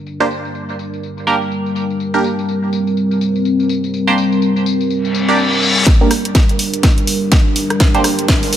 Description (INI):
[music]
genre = bass house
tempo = 124 BPM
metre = 4/4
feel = swing 60% on 16ths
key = G minor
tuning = A4 = 441 Hz
[part]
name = dark analog pad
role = sustained chords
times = 0.0-8.6 s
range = G3 to Bb4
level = -17 LUFS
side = left 1 dB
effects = chorus, sidechain pumping
[part]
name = garage drum kit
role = drums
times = 0.1-8.6 s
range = hi-hat, rim click, snare drum, tambourine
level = -20 LUFS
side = equal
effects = low-pass filter on snare, low-pass filter on hats, low-pass filter on perc
[part]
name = band-passed chord stab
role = stabs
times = 0.2-8.0 s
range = Bb3 to D5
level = -19 LUFS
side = right 3 dB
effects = phaser, sidechain pumping, tape echo
[part]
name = reverse cymbal and riser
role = sound effects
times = 5.1-8.6 s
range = none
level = -20 LUFS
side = left 2 dB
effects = none
[part]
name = electronic kick drum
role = drums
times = 5.9-8.4 s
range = none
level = -12 LUFS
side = equal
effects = none
[sound]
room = moderate lush hall reverb, RT60 2.4 s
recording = none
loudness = -12 LUFS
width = side -10 dB against mid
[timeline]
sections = 0.0-5.9 A section; 5.9-8.6 B section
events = reverse cymbal 5.1-5.9; build-up 5.9-8.6; drum fill 5.9-8.6; filter sweep on synth stab 5.9-8.6; filter sweep 5.9-8.6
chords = 0.0 Gm